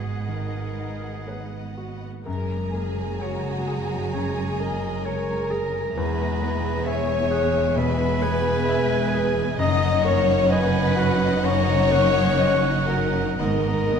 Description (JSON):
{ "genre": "cinematic", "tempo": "65 BPM", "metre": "4/4", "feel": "uneven beats, rubato", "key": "unclear", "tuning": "A4 = 439 Hz", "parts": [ { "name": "warm symphonic violin section", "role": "melody", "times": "0.0-14.0 s", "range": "F#4 to F#5", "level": "-32 LUFS", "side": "left 2 dB", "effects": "none" }, { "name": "clear oboe", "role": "second line", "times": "0.0-14.0 s", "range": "G#4 to A#5", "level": "-32 LUFS", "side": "right 3 dB", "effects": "none" }, { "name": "warm symphonic violin section", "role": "second line", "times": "0.0-14.0 s", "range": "B3 to A#5", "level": "-34 LUFS", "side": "left 1 dB", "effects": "none" }, { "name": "clear baby grand piano", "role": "accompaniment", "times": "0.0-14.0 s", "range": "E2 to E5", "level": "-31 LUFS", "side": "left 2 dB", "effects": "none" }, { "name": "rich symphonic viola section", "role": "accompaniment", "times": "0.0-14.0 s", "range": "G#3 to A#4", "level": "-31 LUFS", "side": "right 3 dB", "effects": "none" }, { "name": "concert harp", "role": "arpeggios", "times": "0.0-14.0 s", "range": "E2 to G#5", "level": "-31 LUFS", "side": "left 7 dB", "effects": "none" }, { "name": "rich symphonic cello section", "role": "bass", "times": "0.0-14.0 s", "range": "E2 to G#2", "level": "-28 LUFS", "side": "right 3 dB", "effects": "none" }, { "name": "warm symphonic double bass section", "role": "bass", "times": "0.0-14.0 s", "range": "E1 to G#1", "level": "-29 LUFS", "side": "right 3 dB", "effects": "none" }, { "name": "mellow French horn section", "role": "sustained chords", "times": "2.2-14.0 s", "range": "F#4 to D#5", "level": "-25 LUFS", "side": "left 4 dB", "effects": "none" }, { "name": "concert flute", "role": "second line", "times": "2.3-14.0 s", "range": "F#5 to D#6", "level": "-34 LUFS", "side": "equal", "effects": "none" }, { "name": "timpani", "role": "percussion", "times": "13.4-14.0 s", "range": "G#2", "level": "-33 LUFS", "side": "right 2 dB", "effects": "none" } ], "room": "wet scoring stage reverb, RT60 1.6 s", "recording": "dark, warm production", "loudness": "-20 LUFS", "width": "side -6 dB against mid", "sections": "0.0-2.3 A section; 2.3-14.0 A section", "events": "timpani fill 13.4-14.0", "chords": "0.0 G#m7; 2.3 F#add9; 6.0 E; 9.6 D#m7/F#; 13.4 G#m7" }